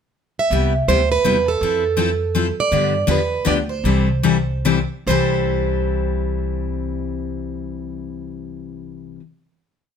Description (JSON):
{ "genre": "acoustic string swing (jazz manouche)", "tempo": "137-163 BPM", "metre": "3/4", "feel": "swing 61% on 8ths", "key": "C major", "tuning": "A4 = 440 Hz", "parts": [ { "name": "picked plugged-in steel-string acoustic guitar", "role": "melody", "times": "0.4-9.2 s", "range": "A4 to E5", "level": "-21 LUFS", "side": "right 6 dB", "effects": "plate reverb" }, { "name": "picked steel-string acoustic guitar", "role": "accompaniment", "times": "0.5-9.2 s", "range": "C3 to A4", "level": "-21 LUFS", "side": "left 6 dB", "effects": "none" }, { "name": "upright bass", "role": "bass", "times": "0.5-9.1 s", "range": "C2 to G2", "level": "-23 LUFS", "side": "right 1 dB", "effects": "none" } ], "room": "moderate studio reverb, RT60 0.6 s", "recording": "none", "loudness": "-17 LUFS", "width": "side -7 dB against mid", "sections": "0.0-0.5 pickup bar; 0.5-5.1 A section; 5.1-7.7 final chord", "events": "slowing down 2.7-5.1", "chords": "0.0 N.C.; 0.5 Cmaj7; 1.6 Fmaj7; 2.7 G6; 3.9 C6" }